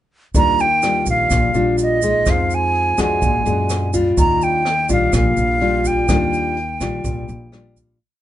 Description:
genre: bossa nova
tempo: 125 BPM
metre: 4/4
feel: straight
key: Eb major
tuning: A4 = 442 Hz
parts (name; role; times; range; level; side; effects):
- nylon-string guitar; accompaniment; 0.3-8.0 s; Bb2 to Gb4; -20 LUFS; left 2 dB; none
- upright bass; bass; 0.3-8.0 s; Bb1 to Gb2; -22 LUFS; right 1 dB; none
- jazz brush drum kit; drums; 0.3-7.9 s; hi-hat, kick drum, rim click; -24 LUFS; equal; none
- tube shaker; percussion; 0.3-8.0 s; none; -31 LUFS; right 7 dB; none
- breathy silver concert flute; melody; 0.4-7.8 s; Eb5 to Bb5; -18 LUFS; right 2 dB; none
room: light reverb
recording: band playing live in one room, nothing above 10.8 kHz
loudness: -15 LUFS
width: side -12 dB against mid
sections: 0.3-8.0 A section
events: fade-out 6.1-8.0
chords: 0.3 Ebmaj9; 2.3 Fm7; 3.2 Bb7b13; 4.2 Ebmaj9

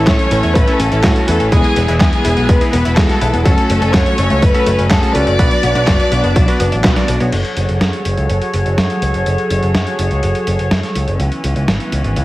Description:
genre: italo disco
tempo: 124 BPM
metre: 4/4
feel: straight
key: unclear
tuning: A4 = 436 Hz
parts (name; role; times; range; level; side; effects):
- dark chamber violin section; melody; 0.0-7.1 s; G#4 to D5; -18 LUFS; left 1 dB; ping-pong delay
- rich symphonic string section; sustained chords; 0.0-12.2 s; E3 to C#5; -20 LUFS; equal; low-pass filter
- bright electric grand piano; stabs; 0.0-7.3 s; G#3 to D5; -20 LUFS; equal; none
- picked electric bass with an envelope filter; bass; 0.0-12.2 s; E1 to A2; -17 LUFS; equal; none
- analog pluck; arpeggios; 0.1-7.3 s; F#3 to A4; -23 LUFS; left 2 dB; chorus, ping-pong delay
- dusty soul sampler-style drum kit; drums; 0.1-12.2 s; crash cymbal, handclaps, hi-hat, snare drum; -20 LUFS; equal; studio reverb
- electronic kick drum; drums; 0.1-6.9 s; none; -14 LUFS; equal; overdrive, studio reverb
room: light reverb, digital ambience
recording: heavily compressed radio sound, vinyl crackle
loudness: -12 LUFS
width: side -17 dB against mid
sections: 0.0-7.3 A section; 7.3-12.2 B section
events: band accent 6.8; filter sweep on string section 7.3-12.2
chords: 0.0 A; 1.5 E; 3.5 F#m; 5.4 Bm; 7.3 F#madd9; 11.2 C#m7

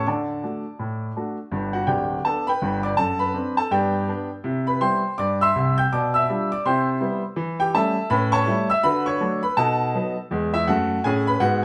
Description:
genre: jazz, stride piano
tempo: 164 BPM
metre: 4/4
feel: swing 62% on 8ths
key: G major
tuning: A4 = 441 Hz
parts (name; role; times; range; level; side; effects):
- clear grand piano; solo; 0.0-11.6 s; D1 to G6; -23 LUFS; equal; none
room: wet studio reverb, RT60 0.8 s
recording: band playing live in one room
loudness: -23 LUFS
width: mono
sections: 0.0-1.5 A section; 1.5-11.6 B section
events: none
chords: 0.1 D; 1.5 G; 3.0 D7/F#; 3.7 G; 4.4 Cmaj7; 5.9 G7/B; 6.6 Cmaj7; 7.4 A7/E; 8.1 A7; 8.8 D; 9.6 B7; 10.3 E

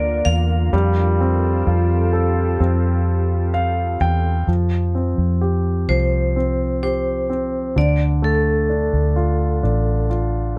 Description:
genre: pop ballad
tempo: 64 BPM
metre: 4/4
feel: straight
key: F major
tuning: A4 = 440 Hz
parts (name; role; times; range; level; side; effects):
- vibraphone with hard mallets; melody; 0.0-10.1 s; A4 to F5; -26 LUFS; equal; slapback echo
- warm concert grand piano; accompaniment; 0.0-10.6 s; D3 to G5; -25 LUFS; equal; none
- glassy FM pad; sustained chords; 0.0-4.4 s; D3 to Bb4; -31 LUFS; equal; ensemble chorus, built-in reverb
- vintage muted fingered electric bass; bass; 0.0-10.6 s; A1 to F2; -21 LUFS; equal; none
room: little or no reverb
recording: dry, close 1970s-style studio recording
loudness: -19 LUFS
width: mono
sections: 0.0-4.5 A section; 4.5-10.6 B section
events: grand piano fill 3.1-4.5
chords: 0.0 Bb/D; 0.7 Fadd9; 4.5 Fsus2; 7.8 Dm

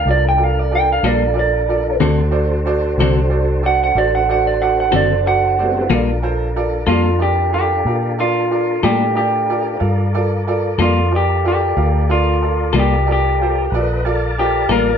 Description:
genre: blues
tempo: 62 BPM (dotted quarters)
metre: 12/8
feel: straight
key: G minor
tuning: A4 = 443 Hz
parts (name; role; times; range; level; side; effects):
- electric guitar through a small old amp; melody; 0.0-15.0 s; F4 to G5; -17 LUFS; right 2 dB; none
- tonewheel organ; sustained chords; 0.0-15.0 s; G3 to A5; -25 LUFS; equal; slow rotary speaker, chorus vibrato
- vintage muted fingered electric bass; bass; 0.0-15.0 s; F#1 to Bb2; -19 LUFS; equal; none
- bright upright piano; accompaniment; 0.1-14.9 s; F4 to F5; -22 LUFS; right 3 dB; none
- clean electric guitar; accompaniment; 1.0-14.9 s; D3 to A4; -18 LUFS; left 6 dB; tremolo
room: moderate studio reverb, RT60 0.7 s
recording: band playing live in one room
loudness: -14 LUFS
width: side -7 dB against mid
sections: 0.0-5.9 A section; 5.9-15.0 B section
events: clean electric guitar solo 5.9-15.0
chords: 0.0 Gm9 (rootless); 2.0 D7; 5.9 Gm9

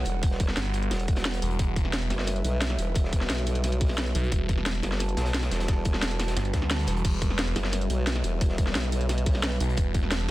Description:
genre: dark technical drum and bass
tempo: 176 BPM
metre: 4/4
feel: straight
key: E minor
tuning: A4 = 440 Hz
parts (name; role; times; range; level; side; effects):
- dark analog pad; sustained chords; 0.0-10.3 s; G3 to A5; -34 LUFS; right 1 dB; chorus, sidechain pumping
- formant-sweep wobble bass; bass; 0.0-10.3 s; E1 to B1; -28 LUFS; equal; chorus
- crunchy breakbeat drum kit; drums; 0.1-10.2 s; hi-hat, snare drum; -41 LUFS; equal; none
- drum and bass drum kit; drums; 0.1-10.3 s; crash cymbal, hi-hat, snare drum; -31 LUFS; equal; none
- electronic kick drum; drums; 0.2-10.0 s; none; -25 LUFS; equal; none
- phased detuned saw bass; bass; 0.6-2.1, 4.1-7.5, 9.6-10.3 s; E1 to D2; -28 LUFS; equal; phaser
room: little or no reverb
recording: dense, heavily limited modern master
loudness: -24 LUFS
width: side -17 dB against mid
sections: 0.0-10.3 A section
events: none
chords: 0.0 Emadd9

